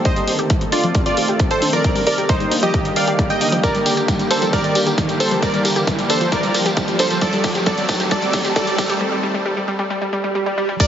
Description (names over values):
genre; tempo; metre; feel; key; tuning
uplifting trance; 134 BPM; 4/4; straight; unclear; A4 = 440 Hz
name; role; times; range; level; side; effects
riser, swell and downlifter; sound effects; 0.0-10.9 s; none; -25 LUFS; right 2 dB; none
supersaw stab; melody; 0.1-10.9 s; Eb4 to G5; -21 LUFS; right 1 dB; sidechain pumping, tape echo
wide unison pluck; arpeggios; 0.1-10.9 s; F3 to G4; -24 LUFS; left 1 dB; sidechain pumping, tape echo
electronic kick drum; drums; 0.1-10.9 s; none; -21 LUFS; equal; none
punchy analog drum machine; drums; 0.1-10.9 s; crash cymbal, hi-hat, tambourine; -24 LUFS; left 1 dB; high-pass filter on hats, high-pass filter on perc, high-pass filter on cymbals
analog pluck; second line; 10.8-10.9 s; D5; -19 LUFS; right 2 dB; chorus, sidechain pumping
room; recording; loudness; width
moderate huge ambient reverb, RT60 6.6 s; heavily compressed radio sound, high-pass filter, nothing above 7.6 kHz; -16 LUFS; side -9 dB against mid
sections
0.0-10.8 A section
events
build-up 0.0-10.8; riser 0.0-9.0; filter sweep on synth arpeggio sound 0.0-10.8; drum fill 3.6-9.0; break 9.0-10.8; swell 9.9-10.8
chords
0.1 Adim; 1.8 Eb; 3.6 Gm; 7.2 Adim; 9.0 N.C.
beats
| 0.05 0.50 0.95 1.40 | 1.84 2.29 2.74 3.19 | 3.64 4.08 4.53 4.98 | 5.43 5.88 6.32 6.77 | 7.22 7.67 8.11 8.56 | 9.01 9.46 9.90 10.35 | 10.80